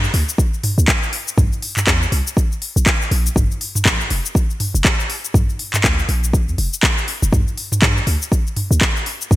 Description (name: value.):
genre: afro house.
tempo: 121 BPM.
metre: 4/4.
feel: swing 58% on 16ths.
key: D minor.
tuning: A4 = 441 Hz.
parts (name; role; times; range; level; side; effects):
warm 808-style bass; bass; 0.0-9.4 s; F1 to G2; -18 LUFS; equal; sidechain pumping.
afro-pop drum kit; drums; 0.0-9.4 s; handclaps, hi-hat, shaker, toms; -19 LUFS; equal; gated reverb.
electronic kick drum; drums; 0.4-9.4 s; none; -17 LUFS; equal; none.
room: little or no reverb.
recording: bright 1980s-style digital production.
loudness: -15 LUFS.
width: side -16 dB against mid.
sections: 0.0-9.4 A section.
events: none.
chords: none.